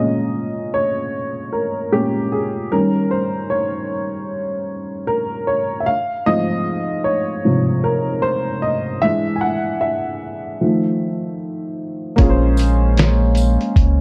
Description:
lo-fi hip hop; 76 BPM; 4/4; swing 62% on 16ths; Bb dorian; A4 = 440 Hz
warm upright piano; accompaniment; 0.0-14.0 s; Ab2 to Bb5; -21 LUFS; equal
pipe organ, stopped flute; sustained chords; 12.2-14.0 s; Ab3 to Db4; -26 LUFS; equal
round analog bass; bass; 12.2-14.0 s; Bb1 to Db2; -18 LUFS; equal
lo-fi sampler-style drum kit; drums; 12.2-14.0 s; hi-hat, kick drum, snare drum; -18 LUFS; equal
tambourine; percussion; 12.6-13.6 s; -37 LUFS; equal
light reverb, small room ambience; dark, warm production; -19 LUFS; mono
0.0-12.2 A section; 12.2-14.0 B section
upright piano solo 0.0-12.2
0.0 Bbm7; 2.7 Eb7; 5.9 Ab6; 9.0 E7; 10.6 F7; 12.2 Bbm7

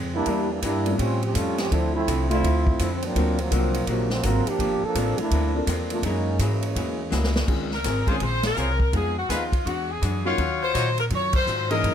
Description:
jazz, big band swing; 166 BPM; 4/4; swing 64% on 8ths; Db major from 7.5 s; A4 = 440 Hz
archtop guitar, miked and amplified; accompaniment; 0.0-11.9 s; Gb2 to Ab4; -33 LUFS; left 5 dB
upright bass; bass; 0.0-11.9 s; G1 to Bb2; -26 LUFS; equal
clear trombone section; second line; 0.1-7.4 s; C3 to A#4; -26 LUFS; right 2 dB
warm baby grand piano; accompaniment; 0.3-11.9 s; Eb3 to A4; -30 LUFS; left 1 dB
swinging big-band drum kit; drums; 0.3-11.9 s; crash cymbal, hi-hat, kick drum, ride cymbal, snare drum; -29 LUFS; equal
clear saxophone section; melody; 7.7-11.9 s; F4 to Db5; -26 LUFS; left 2 dB
warm trumpet section; stabs; 8.1-11.9 s; F4 to F5; -27 LUFS; left 3 dB
little or no reverb; close, detailed microphones; -21 LUFS; side -9 dB against mid
0.0-7.5 A section; 7.5-11.9 B section
trombone section solo 0.0-7.5; drum fill 7.1-7.5; band accent 8.4, 11.3
0.3 Em7b5; 1.0 A7alt; 1.7 Dm9; 3.2 D7alt; 4.6 Gm11; 6.0 Gb9; 7.5 Dbmaj7; 8.9 Fm7b5; 9.7 E9; 10.4 Ebm9

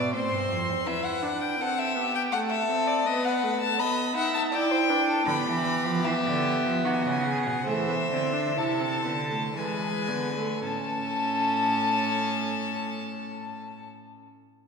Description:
classical, baroque-style fugue for string quartet; 53-82 BPM; 3/4; straight; A minor; A4 = 442 Hz
clear violin; melody; 0.0-13.8 s; D5 to D6; -29 LUFS; left 4 dB
warm violin; second line; 0.0-13.9 s; F#4 to E5; -30 LUFS; left 1 dB
warm viola; accompaniment; 0.0-13.9 s; G#3 to E4; -30 LUFS; right 2 dB
rich cello; bass; 0.0-0.9, 5.3-13.9 s; E2 to F3; -32 LUFS; right 3 dB
wet concert hall reverb, RT60 1.9 s; recorded in a church or concert hall; -24 LUFS; side -5 dB against mid
0.0-10.6 A section; 10.6-14.1 B section
slowing down 4.2-10.6
0.1 Am; 0.9 Em; 2.3 F#m7b5/A (rootless); 3.1 B7; 4.5 Em; 5.3 Bdim; 6.8 B5; 7.7 Am; 9.6 E7; 10.6 A

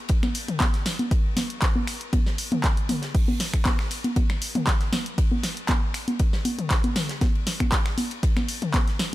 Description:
house; 118 BPM; 4/4; swing 53% on 16ths
electronic kick drum; drums; 0.1-8.8 s; -23 LUFS; equal
modern studio drum kit; drums; 0.1-9.1 s; hi-hat, ride cymbal, snare drum; -37 LUFS; left 2 dB; high-pass filter on cymbals, high-pass filter on hats, high-pass filter on snare, high-pass filter on room
punchy analog drum machine; drums; 0.1-9.1 s; congas, finger snaps, handclaps, hi-hat, snare drum, toms; -26 LUFS; equal
small room ambience; -22 LUFS; side -16 dB against mid
0.0-9.1 A section

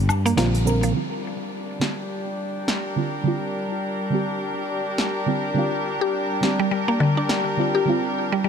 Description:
organic downtempo; 104 BPM; 4/4; swing 59% on 16ths; G minor pentatonic; A4 = 436 Hz
deep mellow chord stab; accompaniment; 0.0-8.5 s; D3 to Bb4; -26 LUFS; right 3 dB; chorus, ping-pong delay
mallet-like synth pluck; arpeggios; 0.0-0.9, 6.0-8.5 s; D3 to G4; -24 LUFS; left 1 dB; chorus, ping-pong delay
fretless electric bass; bass; 0.0-0.9 s; Bb1 to G2; -21 LUFS; left 1 dB
deep house drum kit; drums; 0.1-7.4 s; hi-hat, shaker, snare drum, woodblock; -28 LUFS; equal
warm studio string section; sustained chords; 0.9-8.5 s; G3 to Bb4; -26 LUFS; left 1 dB; vintage 12-bit sampler grit
light reverb, digital ambience; dark, warm production; -21 LUFS; side -7 dB against mid
0.9-8.5 A section
band accent 0.4; filter sweep on synth stab 0.9-8.5
0.0 Gm7

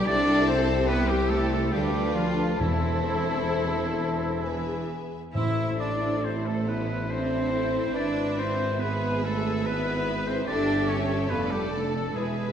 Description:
classical; 63-74 BPM; 3/4; rubato; A minor; A4 = 440 Hz
rich studio violin section; melody; 0.0-12.5 s; E4 to B4; -37 LUFS; left 4 dB
bright oboe; second line; 0.0-12.5 s; E4 to E5; -34 LUFS; equal
dark clarinet; second line; 0.0-12.5 s; A4 to E5; -38 LUFS; left 2 dB
mellow hollow concert flute; second line; 0.0-12.5 s; D5 to A5; -39 LUFS; left 2 dB
rich studio violin section; second line; 0.0-12.5 s; G4 to E5; -38 LUFS; left 2 dB
dark studio viola section; accompaniment; 0.0-12.5 s; B3 to B4; -34 LUFS; left 1 dB
warm French horn section; sustained chords; 0.0-12.5 s; E4 to C5; -35 LUFS; left 5 dB
clear trumpet section; stabs; 0.0-12.5 s; E4 to E5; -32 LUFS; left 2 dB
mellow tuba; bass; 0.0-12.5 s; E1 to D2; -34 LUFS; right 2 dB
rich studio cello section; bass; 0.0-12.5 s; E3 to E4; -30 LUFS; right 2 dB
warm symphonic double bass section; bass; 0.0-12.5 s; E1 to E2; -33 LUFS; right 2 dB
timpani; percussion; 2.6-6.6 s; E2 to A2; -32 LUFS; left 2 dB
wet scoring stage reverb, RT60 1.8 s; dark, warm production; -24 LUFS; side -8 dB against mid
0.0-12.5 A section
0.1 C; 1.7 Dm; 2.6 Am/E; 4.4 E; 5.3 Am; 7.9 E/G#; 10.5 A7/G; 11.3 Dm/F

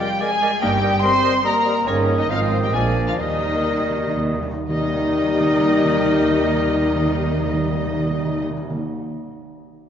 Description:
quick classical-period movement for symphony orchestra; 116-145 BPM; 3/4; straight; Eb major; A4 = 439 Hz
muted chamber violin section; melody; 0.0-8.4 s; Db5 to C6; -25 LUFS; left 1 dB
clear oboe; second line; 0.0-8.4 s; D5 to Eb5; -30 LUFS; equal
mellow clarinet; second line; 0.0-8.4 s; Bb4 to C5; -30 LUFS; right 1 dB
mellow hollow silver concert flute; second line; 0.0-8.4 s; G4 to C6; -27 LUFS; left 1 dB
muted chamber violin section; second line; 0.0-8.4 s; Db4 to C5; -29 LUFS; equal
dark bassoon; accompaniment; 0.0-8.4 s; Eb3 to Ab3; -28 LUFS; right 1 dB
dark French horn section; sustained chords; 0.0-8.4 s; Db3 to Eb4; -24 LUFS; left 4 dB
muted chamber viola section; accompaniment; 0.6-8.4 s; G3 to Eb4; -29 LUFS; right 2 dB
muted chamber cello section; bass; 0.6-8.4 s; G2 to Eb3; -28 LUFS; right 2 dB
muted chamber double bass section; bass; 0.6-8.4 s; G1 to Eb2; -28 LUFS; right 2 dB
timpani; percussion; 3.2-8.8 s; Eb3; -25 LUFS; equal
wet concert hall reverb, RT60 2.4 s; nothing above 7.6 kHz; -17 LUFS; side -8 dB against mid
0.0-4.7 A section; 4.7-7.7 B section
slowing down 1.2-4.7; timpani fill 3.2-4.7
0.0 Bb7; 0.6 Eb/G; 2.3 Ab; 2.7 Bb7; 3.2 Eb

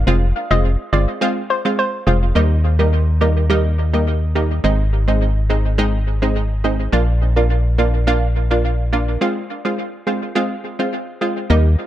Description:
dancehall; 105 BPM; 4/4; straight; Eb major; A4 = 440 Hz
organ-like FM bass; bass; 0.0-11.8 s; F1 to Eb2; -16 LUFS; equal
punchy chord stab; accompaniment; 0.1-11.7 s; G3 to F4; -20 LUFS; right 1 dB; chorus, tape echo
hollow square pluck; melody; 0.5-2.2 s; C5 to Eb5; -23 LUFS; left 1 dB; chorus, tape echo
light reverb, digital ambience; echo-heavy mix; -15 LUFS; side -12 dB against mid
0.0-2.4 A section; 2.4-11.5 B section
break 9.2-11.5
0.1 Fm; 2.4 Eb; 4.6 Ab; 6.9 Bb; 9.2 Fm

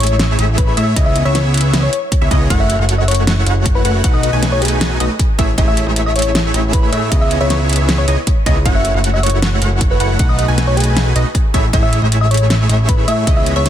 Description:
future bass; 156 BPM; 4/4; half-time; A4 = 439 Hz
soft struck synth lead; melody; 0.0-13.7 s; G#4 to E5; -21 LUFS; left 2 dB; chorus, sidechain pumping, dub echo
wide unison pluck; arpeggios; 0.0-13.7 s; D#5 to G#5; -26 LUFS; right 1 dB; sidechain pumping, dub echo
dense compressed supersaw; riff; 0.0-13.7 s; A3 to G#5; -20 LUFS; right 1 dB; vintage 12-bit sampler grit, sidechain pumping, dub echo
fat analog bass; bass; 0.0-13.7 s; F#1 to A2; -16 LUFS; equal; sidechain pumping
pop drum kit; drums; 0.0-13.7 s; hi-hat, snare drum; -20 LUFS; equal; soft clipping on snare
electronic kick drum; drums; 0.6-13.3 s; -15 LUFS; equal
little or no reverb; dense, heavily limited modern master; -12 LUFS; side -11 dB against mid
0.0-13.7 A section
0.0 Amaj7; 1.0 C#m9; 2.5 F#m7; 4.0 B7; 5.4 Amaj7; 7.1 C#m9; 8.7 F#m7; 10.2 B7; 11.5 Amaj7

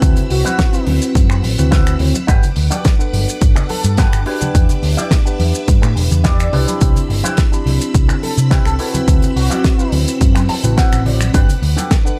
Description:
nu-disco, nu disco; 106 BPM; 4/4; straight; A4 = 444 Hz
mellow tine electric piano; accompaniment; 0.0-12.2 s; C4 to B5; -25 LUFS; equal; vintage 12-bit sampler grit, analog delay
string machine, full ensemble; sustained chords; 0.0-12.2 s; C4 to E6; -30 LUFS; equal; ensemble chorus, sidechain pumping
electric guitar with an envelope filter; riff; 0.0-12.1 s; C4 to A5; -27 LUFS; equal; lush chorus, analog delay
hollow-body short-scale picked electric bass; bass; 0.0-11.7 s; E1 to C3; -18 LUFS; equal
damped 70s drum kit; drums; 0.0-12.2 s; finger snaps, hi-hat, shaker, snare drum; -24 LUFS; equal
electronic kick drum; drums; 0.0-12.0 s; -16 LUFS; equal
congas; percussion; 0.2-11.9 s; -28 LUFS; equal
unison lead; melody; 0.3-9.9 s; F#4 to D5; -28 LUFS; equal; subtle chorus, analog delay
studio ambience; -14 LUFS; mono
0.0-12.2 A section
clean electric guitar fill 10.2-11.3
0.0 D13; 2.3 Gmaj7; 4.3 Em7; 6.5 Cmaj7; 8.8 D13; 11.3 Gmaj7

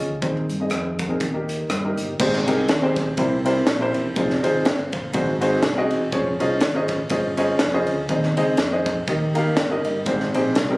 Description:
uptempo gospel; 122 BPM; 4/4; swing 55% on 8ths; Ab major; A4 = 440 Hz
warm baby grand piano; accompaniment; 0.0-10.8 s; Ab2 to Bb5; -21 LUFS; equal
fingered electric bass; bass; 0.0-10.8 s; E1 to G2; -28 LUFS; equal
crisp fusion drum kit; drums; 0.0-10.7 s; crash cymbal, hi-hat, kick drum, ride cymbal, rim click, snare drum; -25 LUFS; equal
moderate studio ambience, RT60 0.5 s; recorded on a phone in the room, club reverb, compression; -19 LUFS; side -22 dB against mid
0.0-2.2 A section; 2.2-10.8 B section
grand piano fill 9.1-10.1
0.2 Ab/Eb; 1.2 Eb; 2.2 Abmaj7; 3.2 C7; 4.2 Fm7; 5.1 Ab7; 6.1 Dbmaj7/F; 8.1 Ab; 9.1 Eb; 10.1 Abmaj7

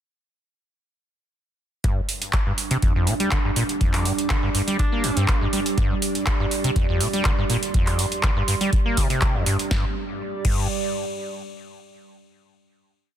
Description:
acid house; 122 BPM; 4/4; straight; A4 = 440 Hz
warbly tape-like pad; sustained chords; 2.6-9.7 s; D4; -32 LUFS; right 4 dB; chorus, built-in reverb, vintage 12-bit sampler grit, sidechain pumping
liquid acid bass; riff; 1.8-10.7 s; F2 to Bb3; -25 LUFS; equal; chorus, overdrive, sidechain pumping, ping-pong delay
electro analog drum machine; drums; 1.8-10.6 s; crash cymbal, handclaps, hi-hat, snare drum; -27 LUFS; right 1 dB
electronic kick drum; drums; 1.8-10.6 s; -23 LUFS; equal
warbly tape-like pad; texture; 2.6-11.6 s; G3 to D6; -30 LUFS; right 4 dB; chorus, built-in reverb, phaser, sidechain pumping
breathy alto saxophone; melody; 4.8-5.5 s; D4; -34 LUFS; left 2 dB; dub echo
light reverb; dense, heavily limited modern master; -20 LUFS; side -10 dB against mid
1.8-9.7 groove; 9.7-11.7 final chord
1.8 G5

